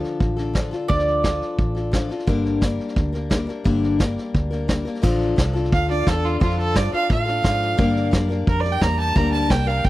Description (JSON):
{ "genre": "honky-tonk and classic country", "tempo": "174 BPM", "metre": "4/4", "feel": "straight", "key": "D minor", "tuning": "A4 = 440 Hz", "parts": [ { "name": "picked steel-string acoustic guitar", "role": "accompaniment", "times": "0.0-9.9 s", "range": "G2 to Bb4", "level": "-24 LUFS", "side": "left 3 dB", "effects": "none" }, { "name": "vintage muted fingered electric bass", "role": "bass", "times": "0.0-9.9 s", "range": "G1 to A2", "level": "-24 LUFS", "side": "equal", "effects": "none" }, { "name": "vintage brush drum kit", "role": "drums", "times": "0.0-9.9 s", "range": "crash cymbal, hi-hat, kick drum, snare drum", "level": "-22 LUFS", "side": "equal", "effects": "none" }, { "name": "mandolin", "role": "melody", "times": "0.9-2.1 s", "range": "D5", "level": "-24 LUFS", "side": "right 2 dB", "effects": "none" }, { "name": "rich fiddle", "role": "second line", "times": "5.7-9.9 s", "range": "F4 to Bb5", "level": "-23 LUFS", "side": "right 3 dB", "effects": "tape echo" } ], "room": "little or no reverb", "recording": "dry, close 1970s-style studio recording", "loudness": "-18 LUFS", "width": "side -16 dB against mid", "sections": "0.0-5.0 A section; 5.0-9.9 B section", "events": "fiddle solo 5.0-9.9", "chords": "0.0 Dm; 2.3 Gm; 5.0 Dm; 7.8 Gm", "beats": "0.20 0.55 | 0.89 1.24 1.58 1.93 | 2.27 2.62 2.96 3.31 | 3.65 4.00 4.34 4.69 | 5.03 5.38 5.72 6.07 | 6.41 6.75 7.10 7.44 | 7.79 8.13 8.48 8.82 | 9.16 9.51 9.85" }